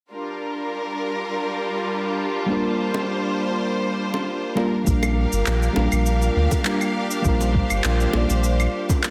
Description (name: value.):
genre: sunset chillout.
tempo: 101 BPM.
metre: 4/4.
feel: swing 54% on 16ths.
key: Bb major.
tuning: A4 = 440 Hz.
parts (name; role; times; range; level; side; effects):
rich symphonic string section; sustained chords; 0.1-9.1 s; G3 to F5; -28 LUFS; equal; shimmer reverb.
mellow FM electric piano; accompaniment; 2.5-9.1 s; G3 to D5; -26 LUFS; equal; chorus, digital delay, shimmer reverb.
bongos; percussion; 2.9-9.0 s; none; -34 LUFS; equal; none.
warm sub bass; bass; 4.9-8.7 s; G1 to D2; -23 LUFS; equal; none.
electronic kick drum; drums; 4.9-9.0 s; none; -24 LUFS; equal; none.
electronic shaker, claves and handclaps; drums; 4.9-9.1 s; none; -30 LUFS; equal; none.
room: light reverb.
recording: dense, heavily limited modern master.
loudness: -22 LUFS.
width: mono.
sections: 0.1-4.9 A section; 4.9-9.1 B section.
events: none.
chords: 0.1 Bb6.